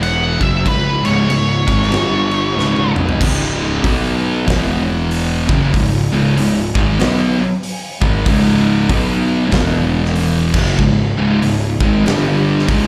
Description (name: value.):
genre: stoner and doom metal.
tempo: 95 BPM.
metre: 4/4.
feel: swing 61% on 8ths.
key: C# phrygian.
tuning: A4 = 441 Hz.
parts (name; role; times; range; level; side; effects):
octave-fuzz lead guitar; melody; 0.0-2.9 s; B4 to F#5; -22 LUFS; equal; distortion, tape echo.
thick fuzz guitar; riff; 0.0-12.9 s; C#2 to B3; -18 LUFS; equal; distortion.
fuzz picked electric bass; bass; 0.0-12.9 s; C#1 to B1; -22 LUFS; equal; overdrive.
big rock drum kit; drums; 0.0-12.9 s; crash cymbal, hi-hat, kick drum, snare drum, toms; -22 LUFS; equal; none.
room: small room reverb.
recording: live gig heard through the venue's PA, club reverb.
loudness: -15 LUFS.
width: mono.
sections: 0.0-3.2 A section; 3.2-12.9 B section.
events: drum fill 2.6-3.2.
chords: 0.3 C#5; 1.9 G5; 2.6 C#5; 3.8 B5; 4.5 E5; 5.4 C#5; 8.9 B5; 9.5 E5; 10.5 C#5; 12.0 G5.